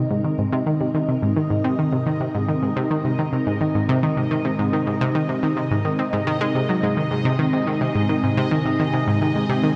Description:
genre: ambient, sequencer-driven space music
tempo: 107 BPM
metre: 4/4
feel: straight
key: unclear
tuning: A4 = 439 Hz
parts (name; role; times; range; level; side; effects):
- phased string machine; sustained chords; 0.0-9.8 s; C3 to Bb4; -30 LUFS; equal; ensemble chorus, phaser
- vibraphone with soft mallets; arpeggios; 0.0-9.7 s; C4 to Ab4; -28 LUFS; equal; delay
- analog pluck; riff; 0.0-9.7 s; Ab2 to C4; -23 LUFS; equal; chorus, delay
- bubbling stepped-filter texture; texture; 0.0-9.8 s; Eb5; -33 LUFS; equal; chorus, built-in reverb
room: wet huge ambient reverb, RT60 8.5 s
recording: in a vast, echoing space, nothing above 10.3 kHz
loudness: -21 LUFS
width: mono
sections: 0.0-9.8 A section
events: fade-in on string machine 0.0-9.8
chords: 0.0 Abadd9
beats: | 0.10 0.66 1.22 1.78 | 2.35 2.91 3.47 4.03 | 4.59 5.15 5.71 6.27 | 6.83 7.39 7.95 8.51 | 9.07 9.63

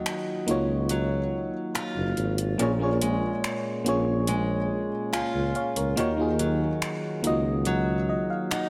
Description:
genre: contemporary R&B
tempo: 71 BPM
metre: 4/4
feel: straight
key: Eb minor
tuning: A4 = 441 Hz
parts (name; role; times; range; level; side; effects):
- FM electric piano; accompaniment; 0.0-8.7 s; Bb3 to Ab5; -31 LUFS; equal; none
- picked steel-string acoustic guitar; arpeggios; 0.0-8.7 s; Bb2 to F4; -32 LUFS; equal; digital delay
- smooth R&B drum kit; drums; 0.1-8.7 s; finger snaps, hi-hat; -36 LUFS; equal; overdrive
- dark tuba; bass; 0.5-8.3 s; Gb1 to Eb2; -31 LUFS; equal; none
room: light reverb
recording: none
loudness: -27 LUFS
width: mono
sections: 0.0-8.7 A section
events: break 0.0-8.7; FM electric piano fill 7.7-8.7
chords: 0.0 Ebm9; 2.6 Bbm7; 6.0 Ebm9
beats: 0.06 0.90 1.75 | 2.59 3.44 4.28 5.13 | 5.97 6.82 7.66 8.51

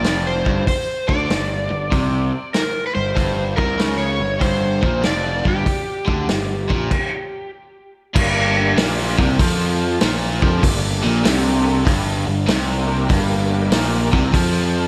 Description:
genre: blues rock power trio and southern rock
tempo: 96 BPM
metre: 4/4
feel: swing 66% on 8ths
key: G minor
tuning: A4 = 440 Hz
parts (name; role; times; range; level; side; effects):
- overdriven slide guitar; melody; 0.0-7.5 s; G4 to D5; -26 LUFS; equal; slapback echo
- overdriven electric guitar; riff; 0.0-14.9 s; F2 to F3; -25 LUFS; equal; slapback echo
- fuzz picked electric bass; bass; 0.0-14.9 s; F1 to F2; -24 LUFS; equal; overdrive
- vintage drum kit; drums; 0.0-14.5 s; crash cymbal, hi-hat, kick drum, snare drum; -23 LUFS; equal; none
- bright tonewheel organ; sustained chords; 8.2-14.3 s; Bb3 to Bb4; -30 LUFS; equal; slow rotary speaker, chorus vibrato
room: moderate lush hall reverb, RT60 1.9 s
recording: big arena sound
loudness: -19 LUFS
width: mono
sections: 0.0-8.2 A section; 8.2-14.9 B section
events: stop 6.9-8.2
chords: 0.0 G5; 8.2 Gm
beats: 0.05 | 0.67 1.30 1.92 2.54 | 3.17 3.79 4.42 5.04 | 5.67 6.29 6.91 7.53 | 8.15 8.77 9.39 10.01 | 10.63 11.25 11.87 12.49 | 13.11 13.72 14.34

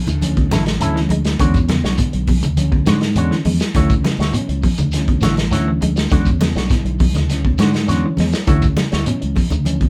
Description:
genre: afrobeat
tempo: 102 BPM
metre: 4/4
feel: straight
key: E mixolydian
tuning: A4 = 440 Hz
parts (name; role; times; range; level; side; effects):
- semi-hollow electric guitar; arpeggios; 0.0-9.9 s; A2 to G#3; -26 LUFS; equal; none
- electric guitar with an envelope filter; stabs; 0.1-9.8 s; F#3 to C#5; -26 LUFS; equal; none
- fingered electric bass; bass; 0.1-9.9 s; A1 to G#2; -22 LUFS; equal; none
- crunchy breakbeat drum kit; drums; 0.1-9.9 s; hi-hat, kick drum, snare drum; -22 LUFS; equal; none
- congas; percussion; 0.1-9.8 s; none; -24 LUFS; equal; none
- shekere; percussion; 0.1-9.8 s; none; -28 LUFS; equal; none
- overdriven reed electric piano; accompaniment; 0.2-9.9 s; D3 to F#5; -29 LUFS; equal; none
room: light reverb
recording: band playing live in one room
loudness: -17 LUFS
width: mono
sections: 0.0-9.9 A section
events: reed electric piano fill 7.3-8.5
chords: 0.0 Dmaj9; 1.4 E13; 3.8 Dmaj9; 6.1 E13; 8.5 Dmaj9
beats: 0.22 0.81 | 1.39 1.98 2.57 3.16 | 3.75 4.34 4.93 5.52 | 6.11 6.70 7.29 7.88 | 8.47 9.07 9.66

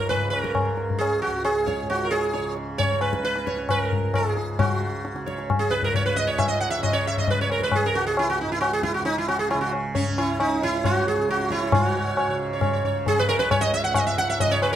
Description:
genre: indian classical, Hindustani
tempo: 134 BPM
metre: 4/4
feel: straight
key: C# raga bhimpalasi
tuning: A4 = 440 Hz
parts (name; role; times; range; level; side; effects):
- sitar; melody; 0.0-14.8 s; C#4 to F#5; -23 LUFS; right 2 dB; slapback echo
- tanpura; drone; 0.0-14.8 s; C#2 to C#3; -32 LUFS; right 2 dB; none
- tabla; percussion; 0.1-14.8 s; none; -25 LUFS; left 3 dB; none
room: moderate studio ambience, RT60 0.5 s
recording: none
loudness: -21 LUFS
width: side -10 dB against mid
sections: 0.0-11.7 A section; 11.7-14.8 B section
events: none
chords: none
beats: 0.09 0.54 | 0.99 1.44 1.89 2.35 | 2.79 3.24 3.69 4.14 | 4.59 5.04 5.49 5.94 | 6.38 6.83 7.28 7.73 | 8.17 8.62 9.06 9.51 | 9.96 10.40 10.85 11.29 | 11.74 12.18 12.62 13.07 | 13.51 13.96 14.40

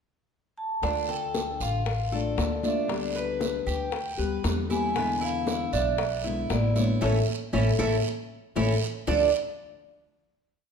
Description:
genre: latin, Cuban son and guajira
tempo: 116 BPM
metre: 4/4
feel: straight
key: D dorian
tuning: A4 = 441 Hz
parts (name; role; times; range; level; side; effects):
- vibraphone with medium hard mallets; melody; 0.6-9.3 s; A4 to A5; -30 LUFS; left 2 dB; none
- nylon-string guitar; accompaniment; 0.8-9.3 s; B2 to G4; -33 LUFS; left 6 dB; none
- Cuban tres; arpeggios; 0.8-9.3 s; B3 to D5; -31 LUFS; right 8 dB; none
- upright bass; bass; 0.8-9.3 s; A1 to E2; -30 LUFS; equal; none
- bongos; percussion; 0.8-9.2 s; none; -36 LUFS; left 5 dB; none
- congas; percussion; 0.8-9.2 s; none; -34 LUFS; right 1 dB; none
- guiro; percussion; 0.8-9.2 s; none; -40 LUFS; right 5 dB; none
room: moderate large studio reverb, RT60 1.3 s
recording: minimal, uncompressed stereo recording, lossy compression artefacts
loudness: -24 LUFS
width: side -6 dB against mid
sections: 0.0-0.8 pickup bar; 0.8-9.1 verse; 9.1-10.7 final chord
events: band accent 7.0-9.1; drum fill 8.3-9.1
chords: 0.0 N.C.; 0.8 Dm; 2.9 G/D; 5.0 E7; 7.0 A; 9.1 Dm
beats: 0.31 | 0.83 1.34 1.86 2.38 | 2.89 3.41 3.93 4.44 | 4.96 5.47 5.99 6.50 | 7.02 7.53 8.05 8.56 | 9.08

